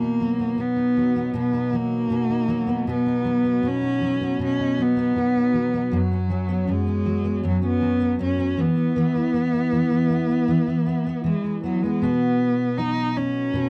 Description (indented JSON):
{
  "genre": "acoustic pop",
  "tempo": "79 BPM",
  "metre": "4/4",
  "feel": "straight",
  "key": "B major",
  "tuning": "A4 = 438 Hz",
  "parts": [
    { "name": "warm cello", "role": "melody", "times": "0.0-13.7 s", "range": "F#3 to D#4", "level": "-24 LUFS", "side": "equal", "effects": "none" },
    { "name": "fingerpicked steel-string acoustic guitar", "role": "accompaniment", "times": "0.0-13.7 s", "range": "F#2 to F#4", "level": "-27 LUFS", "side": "equal", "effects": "double-tracked" }
  ],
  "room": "wet booth ambience, RT60 0.2 s",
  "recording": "dry, close 1970s-style studio recording",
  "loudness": "-22 LUFS",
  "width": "mono",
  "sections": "0.0-12.0 A section; 12.0-13.7 B section",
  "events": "none",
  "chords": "0.0 B; 5.9 F#sus4; 8.6 E5; 12.0 B"
}